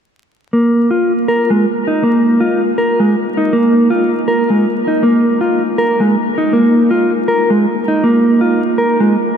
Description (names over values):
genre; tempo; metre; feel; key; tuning
trip hop; 80 BPM; 4/4; swing 59% on 16ths; unclear; A4 = 442 Hz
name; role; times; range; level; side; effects
mellow electric guitar; arpeggios; 0.5-9.2 s; Ab3 to Bb4; -11 LUFS; equal; low-pass filter, diffuse ambient delay
room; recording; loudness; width
wet huge ambient reverb, RT60 8.0 s; dreamy mix soaked in reverb, vinyl crackle; -11 LUFS; side -8 dB against mid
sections
0.5-9.4 A section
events
none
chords
none